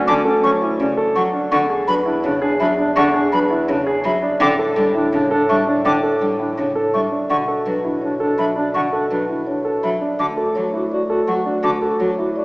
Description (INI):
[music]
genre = classical, minimalist pattern music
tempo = 166 BPM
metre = 4/4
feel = straight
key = unclear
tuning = A4 = 439 Hz
[part]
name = mellow clarinet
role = second line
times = 0.0-12.4 s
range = C#4 to F#4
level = -23 LUFS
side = equal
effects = none
[part]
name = warm grand piano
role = arpeggios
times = 0.0-12.4 s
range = D4 to A4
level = -21 LUFS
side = right 1 dB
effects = none
[part]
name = warm bass clarinet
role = bass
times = 0.0-12.4 s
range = D2 to B2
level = -28 LUFS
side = equal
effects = none
[part]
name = marimba with soft mallets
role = melody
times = 0.1-12.4 s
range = A4 to A5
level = -23 LUFS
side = left 1 dB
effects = none
[part]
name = warm cello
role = accompaniment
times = 0.1-12.1 s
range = C#3 to G3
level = -25 LUFS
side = equal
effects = none
[part]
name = bright silver concert flute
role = arpeggios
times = 0.1-11.7 s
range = B5 to D6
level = -24 LUFS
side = equal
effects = none
[sound]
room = wet church reverb, RT60 3.4 s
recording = recorded in a church or concert hall, small speaker sound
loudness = -16 LUFS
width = side -24 dB against mid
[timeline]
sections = 0.0-12.4 A section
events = none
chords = 0.0 Dmaj7; 1.5 E9; 4.4 A7sus4; 7.3 Bm7; 10.2 Dmaj7